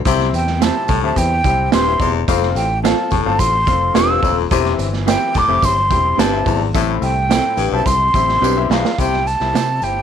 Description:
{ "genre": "uptempo 1960s-style soul", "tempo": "107 BPM", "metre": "4/4", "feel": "straight", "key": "C major", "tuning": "A4 = 439 Hz", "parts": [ { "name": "clear baby grand piano", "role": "accompaniment", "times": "0.1-10.0 s", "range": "A2 to G5", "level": "-23 LUFS", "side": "left 11 dB", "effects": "none" }, { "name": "growling baritone saxophone", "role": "riff", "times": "0.1-9.2 s", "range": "E2 to C3", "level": "-21 LUFS", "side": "left 13 dB", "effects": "none" }, { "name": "fingered electric bass", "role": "bass", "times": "0.1-10.0 s", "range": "Eb1 to C3", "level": "-21 LUFS", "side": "equal", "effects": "none" }, { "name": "raw garage drum kit", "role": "drums", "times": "0.1-10.0 s", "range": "hi-hat, kick drum, snare drum", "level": "-20 LUFS", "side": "right 4 dB", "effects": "none" }, { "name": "tambourine", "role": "percussion", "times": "0.1-10.0 s", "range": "none", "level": "-34 LUFS", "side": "right 15 dB", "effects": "none" }, { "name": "breathy mellow silver concert flute", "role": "melody", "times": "0.3-10.0 s", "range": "F5 to E6", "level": "-18 LUFS", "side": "right 1 dB", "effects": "none" }, { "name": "mellow electric guitar", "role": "stabs", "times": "0.6-9.7 s", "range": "C4 to C5", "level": "-25 LUFS", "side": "right 14 dB", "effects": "none" } ], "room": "light reverb, small room ambience", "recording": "1960s-style stereo with parts hard left and right", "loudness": "-14 LUFS", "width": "side -8 dB against mid", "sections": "0.0-9.0 A section; 9.0-10.0 B section", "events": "drum fill 8.4-9.0", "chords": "0.1 C; 2.3 F; 4.5 C/E; 6.7 Am; 9.0 C" }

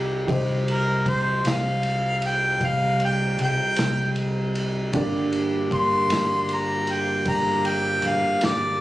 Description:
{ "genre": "slow blues", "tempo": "52 BPM (dotted quarters)", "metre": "12/8", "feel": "straight", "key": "unclear", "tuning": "A4 = 440 Hz", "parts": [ { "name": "warm upright piano", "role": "accompaniment", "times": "0.0-8.8 s", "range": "D4 to Eb5", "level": "-31 LUFS", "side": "right 3 dB", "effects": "none" }, { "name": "tonewheel organ", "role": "sustained chords", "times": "0.0-8.8 s", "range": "G3 to G4", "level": "-28 LUFS", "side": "equal", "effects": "slow rotary speaker" }, { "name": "fingered electric bass", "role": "bass", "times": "0.0-8.8 s", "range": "G1 to C2", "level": "-27 LUFS", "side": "equal", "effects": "none" }, { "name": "vintage drum kit", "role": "drums", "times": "0.3-8.6 s", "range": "kick drum, ride cymbal, snare drum", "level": "-29 LUFS", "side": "equal", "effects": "none" }, { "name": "warm harmonica", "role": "melody", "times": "0.7-8.8 s", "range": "Bb4 to C6", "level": "-24 LUFS", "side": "equal", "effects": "overdrive" } ], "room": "light reverb", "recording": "recorded on a phone in the room, club reverb, compression", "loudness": "-20 LUFS", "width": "side -16 dB against mid", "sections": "0.0-8.8 A section", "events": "harmonica solo 0.0-8.8", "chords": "0.0 Cm; 4.9 Gm" }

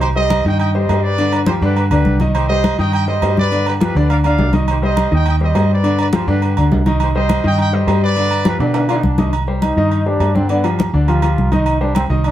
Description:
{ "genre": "latin, salsa", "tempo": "206 BPM", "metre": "4/4", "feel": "straight", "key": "C harmonic minor", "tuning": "A4 = 440 Hz", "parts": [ { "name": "mellow trumpet section", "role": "melody", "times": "0.0-9.0 s", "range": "G4 to G5", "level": "-20 LUFS", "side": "right 2 dB", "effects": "none" }, { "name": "vintage muted fingered electric bass", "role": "bass", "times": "0.0-12.3 s", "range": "C2 to B2", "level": "-16 LUFS", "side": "equal", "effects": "none" }, { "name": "agogo bells and timbales", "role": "percussion", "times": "0.0-12.3 s", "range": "none", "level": "-24 LUFS", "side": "right 5 dB", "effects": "none" }, { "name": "congas", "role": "percussion", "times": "0.0-12.3 s", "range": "none", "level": "-20 LUFS", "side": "left 2 dB", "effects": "none" }, { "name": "clear baby grand piano", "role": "accompaniment", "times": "0.2-12.3 s", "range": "D3 to Eb5", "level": "-19 LUFS", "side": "left 2 dB", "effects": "none" }, { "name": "bright trombone section", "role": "second line", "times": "8.9-9.3 s", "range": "D4 to F4", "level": "-23 LUFS", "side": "left 4 dB", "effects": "none" }, { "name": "growling trombone", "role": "melody", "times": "9.6-12.3 s", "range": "B3 to F4", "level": "-20 LUFS", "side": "equal", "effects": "none" } ], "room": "moderate studio reverb, RT60 0.6 s", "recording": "heard from further back in the room", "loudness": "-13 LUFS", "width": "side -12 dB against mid", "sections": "0.0-9.3 A section; 9.3-12.3 B section", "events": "drum fill 8.6-9.3; trombone solo 9.3-12.3", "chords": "0.0 Cm; 1.2 G7; 2.4 Cm; 3.5 G7; 4.7 Cm; 5.8 G7; 7.0 Cm; 8.2 G7; 9.3 Cm; 10.5 G5; 11.7 Cm" }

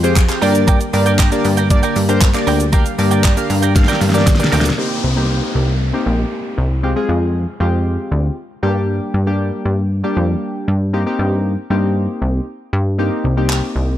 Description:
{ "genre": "dance-pop", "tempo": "117 BPM", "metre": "4/4", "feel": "straight", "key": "C minor", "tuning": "A4 = 439 Hz", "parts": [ { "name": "warm analog keys", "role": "accompaniment", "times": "0.0-13.9 s", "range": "G3 to F5", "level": "-20 LUFS", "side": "left 1 dB", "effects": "chorus, sidechain pumping" }, { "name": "ensemble organ-string", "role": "sustained chords", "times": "0.0-4.7 s", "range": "D3 to G4", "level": "-24 LUFS", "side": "left 2 dB", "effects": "ensemble chorus, sidechain pumping" }, { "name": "twelve-string electric guitar", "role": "riff", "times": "0.0-4.7 s", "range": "Bb4 to G5", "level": "-23 LUFS", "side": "right 6 dB", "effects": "wide subtle chorus" }, { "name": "plucky analog bass", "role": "bass", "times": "0.0-14.0 s", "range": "Bb1 to G2", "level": "-17 LUFS", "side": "equal", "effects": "sidechain pumping" }, { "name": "pop drum kit", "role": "drums", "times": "0.0-4.8, 13.5-13.6 s", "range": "handclaps, hi-hat, kick drum, shaker, snare drum", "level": "-16 LUFS", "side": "equal", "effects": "overdrive" }, { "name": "downlifter", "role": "sound effects", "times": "4.8-8.9 s", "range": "none", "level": "-26 LUFS", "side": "left 1 dB", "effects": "none" } ], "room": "digital ambience", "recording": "none", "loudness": "-14 LUFS", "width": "side -12 dB against mid", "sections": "0.0-4.8 A section; 4.8-14.0 B section", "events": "drum fill 3.8-4.8", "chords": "0.4 Gm; 4.8 Cm7; 6.8 Fmadd9; 8.6 Gm; 10.9 Eb6/G" }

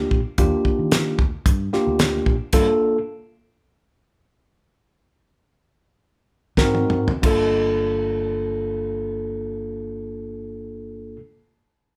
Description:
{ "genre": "straight-eighth soul blues", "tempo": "89-112 BPM", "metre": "4/4", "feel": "swing 53% on 16ths", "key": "G minor", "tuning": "A4 = 440 Hz", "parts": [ { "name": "mellow tine electric piano", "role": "accompaniment", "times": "0.0-3.0, 6.6-11.2 s", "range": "Bb3 to Bb4", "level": "-24 LUFS", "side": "equal", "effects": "none" }, { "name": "fingered electric bass", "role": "bass", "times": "0.0-2.7, 6.6-11.2 s", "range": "G1 to Eb3", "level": "-31 LUFS", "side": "equal", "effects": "none" }, { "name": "damped 70s drum kit", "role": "drums", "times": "0.1-2.7, 6.6-7.4 s", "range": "crash cymbal, hi-hat, kick drum, snare drum, toms", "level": "-23 LUFS", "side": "equal", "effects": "none" } ], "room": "light reverb", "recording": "band playing live in one room", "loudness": "-21 LUFS", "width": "mono", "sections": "0.0-7.2 A section; 7.2-12.0 B section", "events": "slowing down 2.5-7.2; stop 2.5-6.6; drum fill 6.6-7.2", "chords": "0.0 Ebmaj7; 2.5 Gm7 (rootless); 6.6 Ab7; 7.2 Gm7" }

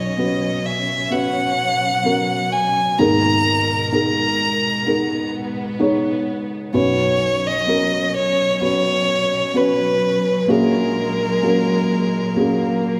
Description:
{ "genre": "pop ballad", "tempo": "64 BPM", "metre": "4/4", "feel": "straight", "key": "B major", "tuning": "A4 = 440 Hz", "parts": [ { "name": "warm violin", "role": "melody", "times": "0.0-13.0 s", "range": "A#4 to A#5", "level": "-22 LUFS", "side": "equal", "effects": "none" }, { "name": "felt-muted upright piano", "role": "accompaniment", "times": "0.0-13.0 s", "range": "G#1 to C#5", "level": "-23 LUFS", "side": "equal", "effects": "none" }, { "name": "warm studio string section", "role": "sustained chords", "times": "0.0-13.0 s", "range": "A#2 to A#4", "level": "-27 LUFS", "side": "equal", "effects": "none" } ], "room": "wet recital hall reverb, RT60 1.7 s", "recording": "recorded in a church or concert hall", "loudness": "-19 LUFS", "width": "mono", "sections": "0.0-13.0 A section", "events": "none", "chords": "0.0 Bsus2; 3.0 G#madd9; 6.7 Bsus2; 10.5 F#add9/A#" }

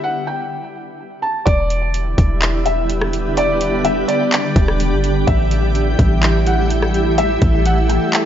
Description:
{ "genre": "hip hop, atmospheric cloud-rap", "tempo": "126 BPM", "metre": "4/4", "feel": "half-time", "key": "unclear", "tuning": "A4 = 440 Hz", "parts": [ { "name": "felt-muted upright piano", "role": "melody", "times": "0.0-8.3 s", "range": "D5 to A5", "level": "-22 LUFS", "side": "left 1 dB", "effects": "low-pass filter, tape echo" }, { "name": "shimmering ambient pad", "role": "sustained chords", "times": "2.1-8.3 s", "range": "D3 to G4", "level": "-20 LUFS", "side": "right 1 dB", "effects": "chorus, built-in reverb, sidechain pumping" }, { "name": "warm 808-style bass", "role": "bass", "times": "1.5-8.0 s", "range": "E1 to A1", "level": "-18 LUFS", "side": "equal", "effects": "none" }, { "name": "trap drum kit", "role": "drums", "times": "1.5-8.2 s", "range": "handclaps, hi-hat, kick drum, rim click", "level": "-18 LUFS", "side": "equal", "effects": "vintage 12-bit sampler grit" } ], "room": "light reverb", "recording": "nothing above 7.6 kHz", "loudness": "-14 LUFS", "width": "side -10 dB against mid", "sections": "0.0-1.5 A section; 1.5-8.3 B section", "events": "stop 0.0-1.5", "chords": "0.0 N.C.; 1.5 Em7; 5.3 A5" }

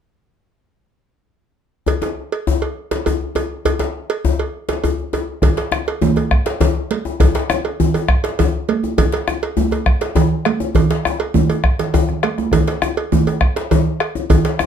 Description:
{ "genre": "west african traditional, West African drum ensemble", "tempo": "135 BPM (dotted quarters)", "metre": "12/8", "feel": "straight", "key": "none", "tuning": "none", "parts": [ { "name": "cowbell", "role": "percussion", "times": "1.9-14.6 s", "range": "none", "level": "-23 LUFS", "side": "right 7 dB", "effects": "none" }, { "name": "djembe", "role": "percussion", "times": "1.9-14.7 s", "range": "none", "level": "-19 LUFS", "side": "left 5 dB", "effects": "none" }, { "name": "bombo", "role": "percussion", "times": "5.4-14.7 s", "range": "none", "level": "-17 LUFS", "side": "equal", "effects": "none" }, { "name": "congas", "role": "percussion", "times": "5.4-14.4 s", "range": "none", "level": "-19 LUFS", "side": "right 7 dB", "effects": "none" } ], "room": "moderate studio reverb, RT60 0.6 s", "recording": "none", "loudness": "-15 LUFS", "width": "side -8 dB against mid", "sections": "1.9-5.4 A section; 5.4-14.7 B section", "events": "drum fill 11.8-12.5", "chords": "none" }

